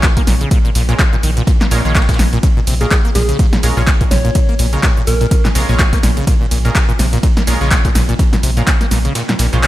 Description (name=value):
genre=acid house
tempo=125 BPM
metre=4/4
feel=swing 57% on 16ths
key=Bb minor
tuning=A4 = 441 Hz
part: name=acid bass, saw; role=riff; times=0.0-9.7 s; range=Bb2 to Bb3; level=-19 LUFS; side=equal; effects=tube saturation, analog chorus, analog delay
part: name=band-passed chord stab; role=stabs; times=0.0-9.7 s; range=Ab3 to Db5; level=-25 LUFS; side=right 1 dB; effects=chorus, analog delay
part: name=warm sub bass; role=bass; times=0.0-9.7 s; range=Bb1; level=-16 LUFS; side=equal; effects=tube saturation, sidechain pumping
part: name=breakbeat sampler-style drum kit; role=drums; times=0.0-9.7 s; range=hi-hat, ride cymbal, snare drum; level=-29 LUFS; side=right 1 dB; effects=none
part: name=electronic kick drum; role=drums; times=0.0-8.8 s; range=none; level=-14 LUFS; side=equal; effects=overdrive, studio ambience
part: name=punchy analog drum machine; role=drums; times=0.0-9.7 s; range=handclaps, hi-hat, ride cymbal, shaker, snare drum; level=-19 LUFS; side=equal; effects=overdrive, studio ambience
part: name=soft struck synth lead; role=melody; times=2.8-5.4 s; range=Ab4 to Db5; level=-23 LUFS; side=equal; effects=chorus, ping-pong delay
room=light reverb, digital ambience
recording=none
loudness=-11 LUFS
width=side -15 dB against mid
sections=0.0-9.7 A section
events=kick drops out 9.2-9.7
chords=0.0 Bbm7